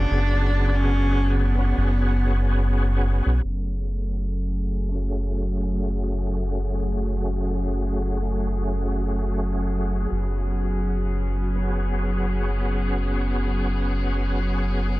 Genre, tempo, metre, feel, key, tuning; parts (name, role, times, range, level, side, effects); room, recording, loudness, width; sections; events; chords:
trip hop; 72 BPM; 4/4; swing 58% on 16ths; F# minor; A4 = 440 Hz
dark cello; melody; 0.0-3.0 s; B3 to D4; -27 LUFS; equal; vintage 12-bit sampler grit, dub echo
overdriven tonewheel organ; accompaniment; 0.0-15.0 s; C#3 to G#4; -30 LUFS; equal; chorus vibrato, fast rotary speaker, tremolo, low-pass filter, tape echo
round analog bass; bass; 0.0-15.0 s; F#1 to B1; -23 LUFS; equal
bright chamber string section; sustained chords; 3.4-15.0 s; F#3 to G#4; -30 LUFS; equal
wind-like tuned noise texture; texture; 4.7-15.0 s; F#3 to F#4; -37 LUFS; equal; built-in reverb
small room ambience; echo-heavy mix, low-pass filter; -21 LUFS; side -18 dB against mid
0.0-3.4 A section; 3.4-15.0 B section
filter sweep on tonewheel organ 3.4-15.0; filter sweep 3.4-15.0
0.0 C#7sus4/F#; 3.4 F#madd9; 10.1 C#7sus4/F#